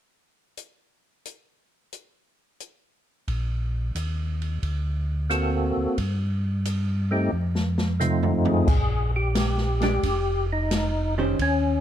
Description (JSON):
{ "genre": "soul jazz organ trio", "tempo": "89 BPM", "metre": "4/4", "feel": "swing 68% on 8ths", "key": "unclear", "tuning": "A4 = 440 Hz", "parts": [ { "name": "open jazz drum kit", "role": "drums", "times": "0.6-11.6 s", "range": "crash cymbal, hi-hat, kick drum, ride cymbal, rim click, snare drum, toms", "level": "-29 LUFS", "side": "equal", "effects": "none" }, { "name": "mellow tonewheel organ", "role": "bass", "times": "3.3-11.8 s", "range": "F1 to G2", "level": "-25 LUFS", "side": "equal", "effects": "chorus vibrato, slow rotary speaker" }, { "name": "percussive tonewheel organ", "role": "melody", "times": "5.3-11.8 s", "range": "A3 to A4", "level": "-25 LUFS", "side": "equal", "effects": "slow rotary speaker, chorus vibrato, plate reverb" }, { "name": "vintage hollow-body jazz guitar", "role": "accompaniment", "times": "9.8-11.4 s", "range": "Eb3 to C5", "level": "-27 LUFS", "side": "right 3 dB", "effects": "none" } ], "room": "light reverb", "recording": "dark, warm production", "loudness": "-22 LUFS", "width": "side -10 dB against mid", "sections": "0.6-3.3 A section; 3.3-8.7 B section; 8.7-11.8 C section", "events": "drum fill 7.3-8.7", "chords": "0.6 N.C.; 3.3 Bbsus4; 4.6 D7b13; 6.0 Am7b5/G; 7.3 F7; 8.7 Bb7(no3)" }